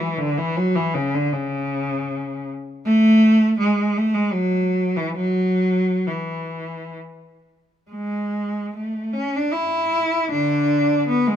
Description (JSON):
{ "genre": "classical, free, expressive piece for unaccompanied cello", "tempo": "58-85 BPM", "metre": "3/4", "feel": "rubato", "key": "unclear", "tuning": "A4 = 440 Hz", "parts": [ { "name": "warm cello", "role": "solo", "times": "0.0-11.4 s", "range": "C#3 to E4", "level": "-18 LUFS", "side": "equal", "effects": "none" } ], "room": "moderate recital hall reverb, RT60 1.7 s", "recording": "close, detailed microphones", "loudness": "-18 LUFS", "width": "side -10 dB against mid", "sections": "0.0-11.4 A section", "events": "none", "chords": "none", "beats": "| 0.56 1.31 2.09 | 2.86 3.59 4.33 | 5.18 6.08 6.96 | 7.91 8.76 9.53 | 10.30 11.08" }